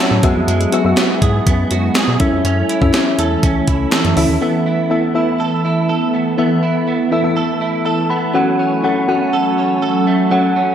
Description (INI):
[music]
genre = 1980s-style pop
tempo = 122 BPM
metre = 4/4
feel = straight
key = unclear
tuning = A4 = 440 Hz
[part]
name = mellow FM electric piano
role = accompaniment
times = 0.0-10.7 s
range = E3 to B5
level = -17 LUFS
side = left 2 dB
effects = chorus
[part]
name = glassy FM pad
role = sustained chords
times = 0.0-10.7 s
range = E3 to G#5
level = -20 LUFS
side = right 1 dB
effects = ensemble chorus, built-in reverb
[part]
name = direct-recorded clean electric guitar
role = riff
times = 0.0-10.7 s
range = F#3 to A4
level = -21 LUFS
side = right 6 dB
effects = ensemble chorus, tape echo
[part]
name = chorused synth bass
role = bass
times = 0.1-4.4 s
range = C#2 to B2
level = -18 LUFS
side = equal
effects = none
[part]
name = gated 80s digital drum machine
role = drums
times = 0.2-4.3 s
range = hi-hat, kick drum, snare drum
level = -17 LUFS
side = equal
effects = gated reverb, gated reverb snare
[part]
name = group handclap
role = percussion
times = 1.0-4.0 s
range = none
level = -32 LUFS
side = left 4 dB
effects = none
[sound]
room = wet recital hall reverb, RT60 1.4 s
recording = big arena sound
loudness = -13 LUFS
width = side -9 dB against mid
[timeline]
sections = 0.0-4.4 A section; 4.4-10.7 B section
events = none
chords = 0.2 Eadd9; 2.2 A; 4.4 Esus4; 8.3 F#m